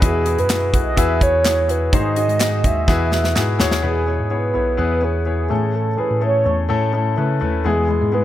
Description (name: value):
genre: piano-driven pop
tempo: 126 BPM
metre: 4/4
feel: straight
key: E major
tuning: A4 = 441 Hz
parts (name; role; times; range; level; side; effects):
- mellow horn-like synth lead; melody; 0.0-8.2 s; G#4 to E5; -21 LUFS; right 2 dB; chorus
- clear grand piano; accompaniment; 0.0-8.2 s; G#2 to D#5; -21 LUFS; left 5 dB; none
- bell-like tine electric piano; bass; 0.0-8.2 s; B1 to C#3; -21 LUFS; right 1 dB; phaser
- modern studio drum kit; drums; 0.0-3.8 s; handclaps, hi-hat, kick drum, snare drum; -20 LUFS; equal; none
- group handclap; percussion; 0.5-3.5 s; none; -31 LUFS; right 5 dB; none
room: light reverb, small room ambience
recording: none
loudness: -16 LUFS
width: side -13 dB against mid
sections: 0.0-3.8 A section; 3.8-8.2 B section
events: drum fill 2.9-3.8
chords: 0.0 Eadd9; 1.9 G#7; 2.9 Eadd9; 3.8 E; 5.5 A; 7.7 E